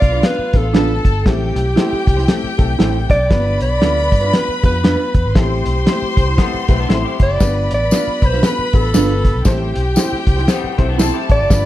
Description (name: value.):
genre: uptempo 1960s-style soul.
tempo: 117 BPM.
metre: 4/4.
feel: swing 59% on 8ths.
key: unclear.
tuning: A4 = 439 Hz.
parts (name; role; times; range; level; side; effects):
mellow alto saxophone; melody; 0.0-11.7 s; G4 to D5; -20 LUFS; right 1 dB; none.
warm studio string section; second line; 0.0-11.7 s; F4 to C6; -24 LUFS; left 3 dB; none.
warm upright piano; accompaniment; 0.0-11.7 s; G2 to D5; -24 LUFS; left 4 dB; none.
vintage muted fingered electric bass; bass; 0.0-11.7 s; F#1 to G2; -19 LUFS; equal; none.
cloth-damped thuddy drum kit; drums; 0.0-11.6 s; hi-hat, kick drum, snare drum; -16 LUFS; equal; none.
mellow electric guitar; stabs; 0.1-11.2 s; D4 to C5; -23 LUFS; right 6 dB; phaser.
electric guitar through a small old amp; riff; 6.4-7.4, 10.5-11.5 s; G3 to G4; -26 LUFS; left 7 dB; none.
tambourine; percussion; 7.4-11.6 s; none; -29 LUFS; left 4 dB; none.
room: light reverb.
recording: none.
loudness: -13 LUFS.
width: side -14 dB against mid.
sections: 0.0-11.7 A section.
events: none.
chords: 0.0 G7; 1.3 Am7; 3.3 G7; 5.4 Am7; 7.4 G7; 9.5 Am7.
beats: 0.23 0.74 | 1.25 1.76 2.28 2.79 | 3.30 3.82 4.33 4.84 | 5.36 5.87 6.38 6.89 | 7.41 7.92 8.43 8.94 | 9.46 9.97 10.48 10.99 | 11.50.